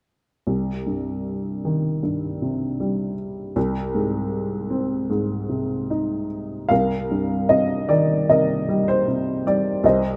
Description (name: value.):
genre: classical, lyrical solo piano.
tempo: 77 BPM.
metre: 4/4.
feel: rubato.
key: C minor.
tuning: A4 = 440 Hz.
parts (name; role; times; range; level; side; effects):
warm upright piano; solo; 0.5-10.2 s; C2 to F5; -22 LUFS; equal; none.
room: light reverb.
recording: close, detailed microphones.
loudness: -23 LUFS.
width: mono.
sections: 0.5-6.7 A section; 6.7-10.2 B section.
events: none.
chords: 0.5 Cm; 3.6 Ab/C; 6.7 Cm7.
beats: | 0.47 1.26 2.04 2.80 | 3.56 4.33 5.10 5.90 | 6.71 7.50 8.30 9.08 | 9.84.